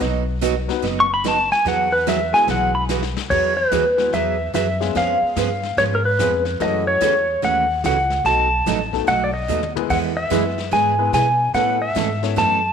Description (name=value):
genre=country, western swing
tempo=146 BPM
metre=4/4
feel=swing 64% on 8ths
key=E major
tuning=A4 = 440 Hz
part: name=picked steel-string acoustic guitar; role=accompaniment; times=0.0-12.6 s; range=B2 to A4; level=-24 LUFS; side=right 13 dB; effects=none
part: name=upright bass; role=bass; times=0.0-12.7 s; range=F#1 to B2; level=-26 LUFS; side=left 1 dB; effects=none
part: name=vintage brush drum kit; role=drums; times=0.0-12.7 s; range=brushed snare drum, crash cymbal, hi-hat, kick drum, snare drum, toms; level=-30 LUFS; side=left 10 dB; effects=none
part: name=clear upright piano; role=accompaniment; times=0.7-12.4 s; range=F#3 to C#5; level=-27 LUFS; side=left 13 dB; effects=none
part: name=pedal steel guitar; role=melody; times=1.0-12.7 s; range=A#4 to C#6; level=-18 LUFS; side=left 1 dB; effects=none
room=moderate echo chamber reverb, RT60 1.9 s, small room reverb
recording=1960s-style stereo with parts hard left and right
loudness=-17 LUFS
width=side -7 dB against mid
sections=0.0-3.3 A section; 3.3-12.7 B section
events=pedal steel guitar solo 0.0-3.3; drum fill 2.9-3.3, 9.5-9.9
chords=0.0 B; 1.7 Eadd9; 5.0 C#7/E#; 6.6 F#m7; 8.2 B7; 9.9 E; 11.5 Aadd9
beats=| 0.01 0.42 0.83 1.25 | 1.66 2.07 2.48 2.89 | 3.30 3.72 4.13 4.54 | 4.95 5.36 5.78 6.19 | 6.60 7.01 7.42 7.84 | 8.25 8.66 9.07 9.48 | 9.90 10.31 10.72 11.13 | 11.55 11.96 12.37